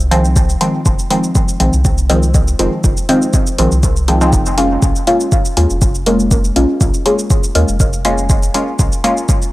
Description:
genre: dub techno.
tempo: 121 BPM.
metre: 4/4.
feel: straight.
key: F minor.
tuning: A4 = 441 Hz.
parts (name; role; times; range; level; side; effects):
soft dub sub bass; bass; 0.0-8.9 s; F1 to Eb2; -16 LUFS; equal; sidechain pumping.
electronic cabasa and hi-hat; drums; 0.0-9.5 s; none; -22 LUFS; equal; overdrive.
filtered dub chord stab; stabs; 0.1-9.5 s; Eb3 to F4; -15 LUFS; equal; chorus, phaser, sidechain pumping, dub echo.
electronic kick drum; drums; 0.4-9.4 s; none; -14 LUFS; equal; none.
room: digital ambience.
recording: dry, gritty hardware recording.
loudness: -11 LUFS.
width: side -18 dB against mid.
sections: 0.0-9.5 A section.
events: none.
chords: 0.0 Fm7; 4.8 Bbm7.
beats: 0.36 | 0.86 1.35 1.85 2.35 | 2.84 3.34 3.83 4.33 | 4.83 5.32 5.82 6.31 | 6.81 7.30 7.80 8.30 | 8.79 9.29.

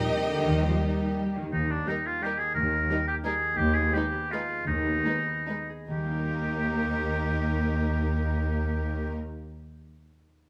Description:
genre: classical, orchestral ballroom waltz.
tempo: 137-188 BPM.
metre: 3/4.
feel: rubato.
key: Eb major.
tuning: A4 = 439 Hz.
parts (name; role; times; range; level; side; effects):
rich chamber violin section; melody; 0.0-9.1 s; Bb4 to Eb5; -39 LUFS; equal; none.
rich chamber violin section; second line; 0.0-9.1 s; Eb4 to G4; -40 LUFS; equal; none.
rich chamber viola section; accompaniment; 0.0-9.1 s; G3 to Eb4; -41 LUFS; equal; none.
mellow French horn section; sustained chords; 0.0-1.4 s; G3 to Bb4; -36 LUFS; equal; none.
concert harp; arpeggios; 0.0-9.8 s; Eb3 to Bb5; -38 LUFS; equal; none.
rich chamber cello section; bass; 0.0-9.1 s; Eb2 to G3; -34 LUFS; equal; none.
warm studio double bass section; bass; 0.5-9.1 s; Eb2; -35 LUFS; equal; none.
clear oboe; second line; 1.5-9.1 s; D4 to Bb4; -32 LUFS; equal; none.
room: light reverb.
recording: close, detailed microphones.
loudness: -28 LUFS.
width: mono.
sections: 0.0-1.5 A section; 1.5-5.9 B section; 5.9-8.4 C section.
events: slowing down 3.1-5.9.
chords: 0.0 Eb; 3.6 Abm/Eb; 5.9 Eb.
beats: 0.10 | 0.45 0.80 1.17 | 1.52 1.87 2.23 | 2.56 2.90 3.25 | 3.58 3.94 4.31 | 4.67 5.06 5.48 | 5.91 6.31 6.74 | 7.14 7.55 7.97.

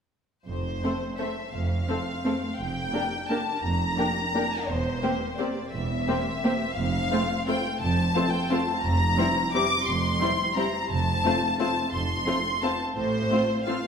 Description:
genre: classical, orchestral ballroom waltz.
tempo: 173 BPM.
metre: 3/4.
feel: uneven beats, rubato.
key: F major.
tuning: A4 = 440 Hz.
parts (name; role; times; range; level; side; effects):
rich studio violin section; melody; 0.5-13.9 s; C5 to D6; -28 LUFS; left 2 dB; none.
warm studio cello section; bass; 0.5-13.3 s; E2 to A2; -32 LUFS; right 2 dB; none.
warm symphonic double bass section; bass; 0.5-13.3 s; E1 to A1; -32 LUFS; right 2 dB; none.
dark symphonic violin section; second line; 0.8-13.7 s; E4 to C5; -33 LUFS; left 2 dB; none.
rich symphonic viola section; accompaniment; 0.8-13.8 s; G3 to D4; -29 LUFS; equal; none.
room: wet recital hall reverb, RT60 1.7 s.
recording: recorded in a church or concert hall.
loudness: -24 LUFS.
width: side -6 dB against mid.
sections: 0.5-13.9 A section.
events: none.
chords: 0.5 F; 2.6 Gm7/F; 4.7 C7/E; 6.8 F; 8.8 C7(no3)/F; 10.9 F; 13.0 F/A.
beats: | 0.47 0.83 1.19 | 1.53 1.88 2.25 | 2.59 2.94 3.30 | 3.63 3.98 4.35 | 4.69 5.03 5.39 | 5.74 6.09 6.45 | 6.78 7.12 7.48 | 7.82 8.16 8.51 | 8.84 9.19 9.54 | 9.87 10.21 10.57 | 10.90 11.24 11.60 | 11.93 12.27 12.63 | 12.97 13.32 13.67.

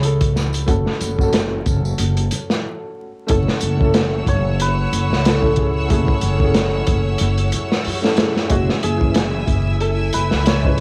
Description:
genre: trip hop.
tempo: 92 BPM.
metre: 4/4.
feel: swing 56% on 16ths.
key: F# minor.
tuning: A4 = 441 Hz.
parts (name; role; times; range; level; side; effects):
santur; melody; 0.0-10.8 s; F#4 to E5; -29 LUFS; equal; tape echo.
dark upright piano; accompaniment; 0.0-10.8 s; E3 to C#5; -27 LUFS; equal; tremolo, vintage 12-bit sampler grit, cassette tape.
upright bass; bass; 0.0-10.8 s; F#1 to F#2; -22 LUFS; equal; none.
crunchy breakbeat drum kit; drums; 0.0-10.8 s; hi-hat, kick drum, snare drum; -22 LUFS; equal; cassette tape.
tambourine; percussion; 0.0-2.6 s; none; -39 LUFS; equal; none.
bright studio violin section; sustained chords; 3.3-10.8 s; C#5 to E6; -31 LUFS; equal; cassette tape.
bowed-like drone; texture; 4.6-10.8 s; E4; -37 LUFS; equal; none.
room: little or no reverb.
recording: home recording on cassette, vinyl crackle.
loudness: -18 LUFS.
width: mono.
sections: 0.0-3.3 A section; 3.3-10.8 B section.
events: stop 2.6-3.3.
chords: 0.0 F#m; 3.3 F#m7; 8.5 C#m/F#.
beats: 0.03 | 0.68 1.33 1.99 2.64 | 3.29 3.94 4.59 5.25 | 5.90 6.55 7.20 7.85 | 8.51 9.16 9.81 10.46.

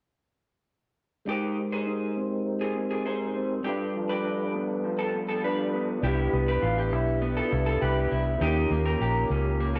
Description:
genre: indie pop.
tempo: 101 BPM.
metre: 4/4.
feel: straight.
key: unclear.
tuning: A4 = 440 Hz.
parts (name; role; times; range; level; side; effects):
electric guitar through a small old amp; second line; 1.3-9.8 s; D4 to C5; -34 LUFS; equal; lush chorus, slapback echo.
electric guitar through a small old amp; accompaniment; 1.3-9.8 s; G2 to G4; -34 LUFS; equal; lush chorus, warbly pitch drift, low-pass filter.
percussive tonewheel organ; accompaniment; 1.3-9.8 s; G3 to C5; -33 LUFS; equal; chorus vibrato, slow rotary speaker, cassette tape, low-pass filter.
vintage muted fingered electric bass; bass; 6.0-9.8 s; A1 to Eb2; -29 LUFS; equal; none.
room: moderate spring reverb, RT60 1.3 s, digital ambience.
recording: none.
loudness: -27 LUFS.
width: mono.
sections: 1.3-9.8 A section.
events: filter sweep 1.3-9.8.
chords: 1.3 Abmaj7; 3.7 G7; 6.0 Cmaj7; 8.4 Eb7.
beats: | 1.28 1.88 2.47 3.06 | 3.66 4.25 4.85 5.44 | 6.03 6.63 7.22 7.82 | 8.41 9.01 9.60.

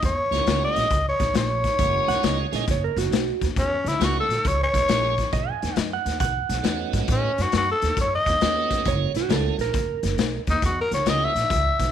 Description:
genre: electric blues shuffle.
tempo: 136 BPM.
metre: 4/4.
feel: swing 66% on 8ths.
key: F# mixolydian.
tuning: A4 = 440 Hz.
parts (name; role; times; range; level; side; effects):
growling tenor saxophone; melody; 0.0-11.9 s; C#4 to E5; -22 LUFS; left 1 dB; slapback echo.
upright bass; bass; 0.0-11.9 s; F#1 to A2; -27 LUFS; right 1 dB; none.
raw garage drum kit; drums; 0.0-11.9 s; hi-hat, kick drum, snare drum; -26 LUFS; left 3 dB; none.
tonewheel organ; accompaniment; 0.3-11.3 s; G#3 to G#4; -30 LUFS; right 14 dB; slow rotary speaker, overdrive.
clean lap steel guitar; second line; 2.1-10.4 s; F#4 to G#5; -28 LUFS; right 13 dB; none.
room: light reverb, studio reverb.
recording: 1960s-style stereo.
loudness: -20 LUFS.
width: side -9 dB against mid.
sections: 0.0-11.9 A section.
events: none.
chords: 0.0 F#7; 5.3 B7; 8.9 F#7.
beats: | 0.02 0.47 0.91 1.35 | 1.79 2.23 2.67 3.12 | 3.56 4.00 4.44 4.88 | 5.33 5.77 6.21 6.65 | 7.09 7.53 7.98 8.42 | 8.86 9.30 9.74 10.19 | 10.63 11.07 11.51.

